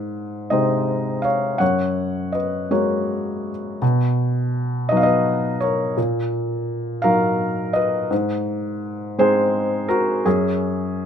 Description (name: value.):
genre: classical, lyrical solo piano.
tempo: 56 BPM (dotted quarters).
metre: 6/8.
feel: rubato.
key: unclear.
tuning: A4 = 440 Hz.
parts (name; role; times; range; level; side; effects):
felt-muted upright piano; solo; 0.0-11.1 s; F#2 to F#5; -19 LUFS; equal; none.
room: moderate studio reverb, RT60 0.5 s.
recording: none.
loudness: -18 LUFS.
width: side -8 dB against mid.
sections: 0.0-11.1 A section.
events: none.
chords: 0.0 G#; 1.6 F#add9; 3.8 Bmaj7; 6.0 D#m/A#; 8.1 G#; 10.3 F#sus2.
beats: 0.52 | 1.61 2.71 | 3.82 4.91 | 5.97 7.04 | 8.11 9.18 | 10.26.